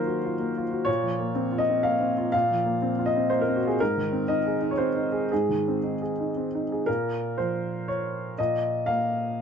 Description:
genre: neoclassical minimalist piano.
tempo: 122 BPM.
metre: 3/4.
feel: rubato.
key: Bb minor.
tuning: A4 = 440 Hz.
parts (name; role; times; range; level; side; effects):
warm upright piano; solo; 0.0-9.4 s; Ab2 to F5; -24 LUFS; equal; none.
room: light reverb.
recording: nothing above 8.0 kHz.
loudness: -24 LUFS.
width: side -7 dB against mid.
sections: 0.0-6.9 A section; 6.9-9.4 B section.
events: none.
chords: 0.0 Ebmadd9; 0.9 Bbmadd9; 3.8 Ab; 6.9 Bbmadd9.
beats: 0.39 | 0.88 1.36 1.85 | 2.33 2.82 3.31 | 3.79 4.29 4.79 | 5.30 5.83 6.36 | 6.87 7.38 7.88 | 8.38 8.88 9.37.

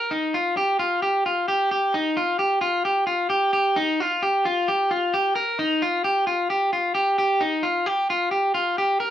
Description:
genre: indie pop.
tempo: 132 BPM.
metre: 4/4.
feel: straight.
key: Eb major.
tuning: A4 = 442 Hz.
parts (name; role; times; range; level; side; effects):
electric guitar at the edge of break-up; solo; 0.0-9.1 s; Eb4 to Bb4; -20 LUFS; equal; none.
room: wet small room reverb, RT60 0.5 s.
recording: band playing live in one room.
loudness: -20 LUFS.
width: side -11 dB against mid.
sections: 0.1-1.9 A section; 1.9-9.1 B section.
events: none.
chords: none.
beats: | 0.11 0.57 1.02 1.48 | 1.94 2.39 2.85 3.31 | 3.76 4.22 4.67 5.13 | 5.59 6.04 6.50 6.95 | 7.41 7.86 8.32 8.77.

